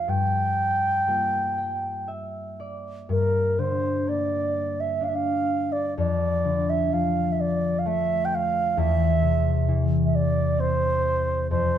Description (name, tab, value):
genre	celtic folk, Celtic slow air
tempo	59-67 BPM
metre	3/4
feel	rubato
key	G dorian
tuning	A4 = 437 Hz
part	baroque flute	melody	0.0-11.8 s	Bb4 to G5	-24 LUFS	right 3 dB	none
part	concert harp	accompaniment	0.0-11.8 s	E2 to G5	-25 LUFS	left 2 dB	none
room	wet stone room reverb, RT60 1.2 s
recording	band playing live in one room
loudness	-21 LUFS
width	side -10 dB against mid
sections	0.0-3.1 A section; 3.1-11.8 B section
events	harp fill 1.1-3.1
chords	0.1 Gm7; 3.1 Gm; 6.0 Dm/F; 8.8 C/E